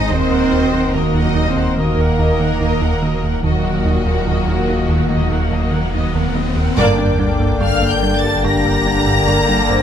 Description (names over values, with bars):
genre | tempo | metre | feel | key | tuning
cinematic, hybrid orchestral and electronic film score | 72 BPM | 4/4 | straight | G minor | A4 = 441 Hz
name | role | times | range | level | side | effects
warm symphonic violin section | melody | 0.0-9.8 s | Gb4 to Bb6 | -24 LUFS | left 2 dB | none
warm symphonic violin section | second line | 0.0-9.8 s | Gb4 to Bb5 | -25 LUFS | left 3 dB | none
rich symphonic viola section | accompaniment | 0.0-9.8 s | D4 to Gb5 | -26 LUFS | left 2 dB | none
mellow French horn section | sustained chords | 0.0-9.8 s | Bb2 to C5 | -26 LUFS | left 4 dB | none
warm analog pad | sustained chords | 0.0-9.8 s | D3 to G5 | -23 LUFS | left 2 dB | lush chorus
rubbery square bass | riff | 0.0-9.8 s | Eb2 to G3 | -21 LUFS | right 1 dB | none
sub bass with octave | bass | 0.0-9.8 s | Eb1 to Ab1 | -24 LUFS | left 1 dB | none
warm studio cello section | bass | 0.0-9.8 s | G2 to Eb4 | -24 LUFS | right 4 dB | none
dark trombone section | sustained chords | 0.1-9.8 s | D3 to Bb3 | -25 LUFS | right 3 dB | none
thumb-piano-like synth pluck | arpeggios | 0.1-9.8 s | Eb3 to G4 | -28 LUFS | right 3 dB | none
warm symphonic double bass section | bass | 0.1-9.8 s | G1 to Eb2 | -23 LUFS | right 3 dB | none
riser and sub drop | sound effects | 3.4-9.8 s | none | -27 LUFS | left 1 dB | none
room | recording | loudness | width
light reverb | none | -14 LUFS | side -9 dB against mid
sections
0.0-6.8 A section; 6.8-9.8 B section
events
riser 3.4-6.8; band accent 6.8-7.6; impact 6.8-9.8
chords
0.1 Ebm; 6.8 Gm